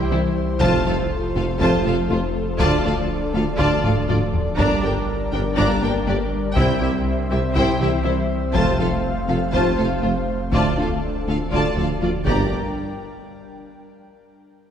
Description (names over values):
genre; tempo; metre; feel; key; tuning
cinematic, hybrid orchestral and electronic film score; 121 BPM; 4/4; straight; G dorian; A4 = 440 Hz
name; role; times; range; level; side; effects
airy breathy pad; sustained chords; 0.0-12.5 s; F3 to F5; -26 LUFS; left 1 dB; chorus
punchy sub bass; bass; 0.0-12.5 s; D1 to C2; -28 LUFS; equal; none
warm symphonic violin section; melody; 0.1-12.6 s; C5 to Bb5; -30 LUFS; left 3 dB; none
warm symphonic violin section; second line; 0.1-12.5 s; E4 to D5; -28 LUFS; left 2 dB; none
clear symphonic viola section; accompaniment; 0.1-12.5 s; D4 to G4; -28 LUFS; right 1 dB; none
soft round pluck; arpeggios; 0.1-12.2 s; C3 to G4; -28 LUFS; left 3 dB; chorus, tape echo
clear symphonic double bass section; bass; 0.1-12.5 s; F1 to D2; -28 LUFS; right 2 dB; none
mellow tuba; bass; 0.1-12.5 s; F1 to D2; -28 LUFS; right 2 dB; none
warm studio cello section; bass; 0.1-12.5 s; D2 to C3; -30 LUFS; right 3 dB; none
clear trombone section; sustained chords; 0.6-12.5 s; G2 to Bb3; -33 LUFS; right 2 dB; none
warm French horn section; sustained chords; 0.6-12.5 s; A3 to G4; -32 LUFS; left 2 dB; none
solo taiko drums; drums; 0.6-13.2 s; none; -27 LUFS; equal; none
room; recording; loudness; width
wet scoring stage reverb, RT60 2.1 s; heard from further back in the room; -18 LUFS; side -8 dB against mid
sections
0.0-12.5 A section; 12.5-14.5 B section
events
drum fill 3.8-4.6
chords
0.0 C; 0.6 F; 2.6 Dm; 4.6 Gm; 6.6 C; 8.5 F; 10.5 Dm; 12.3 Gm; 12.5 N.C.